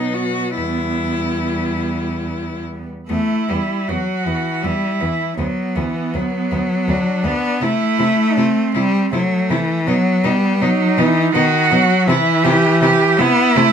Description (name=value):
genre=classical, lyrical piece for cello ensemble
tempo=70-83 BPM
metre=3/4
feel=rubato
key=E minor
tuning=A4 = 441 Hz
part: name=clear cello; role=melody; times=0.0-13.6 s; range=B3 to F#4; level=-24 LUFS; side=left 4 dB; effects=none
part: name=rich cello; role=second line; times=0.0-13.7 s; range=A3 to G4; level=-20 LUFS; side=right 6 dB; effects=none
part: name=clear cello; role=accompaniment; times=0.0-13.7 s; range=D#3 to B3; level=-18 LUFS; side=left 2 dB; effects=none
part: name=rich cello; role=bass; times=0.0-13.6 s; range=D2 to C3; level=-23 LUFS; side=right 2 dB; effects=none
room=moderate studio reverb, RT60 0.6 s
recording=minimal, uncompressed stereo recording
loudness=-15 LUFS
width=side -8 dB against mid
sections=0.0-3.1 A section; 3.1-13.7 A section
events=none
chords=0.0 B; 0.6 Em; 3.1 E5; 5.4 Bm/D; 7.6 Am/C; 9.9 B; 12.1 C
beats=| 0.56 1.42 2.26 | 3.09 3.88 4.63 | 5.38 6.14 6.89 | 7.62 8.38 9.13 | 9.87 10.62 11.35 | 12.08 12.82 13.56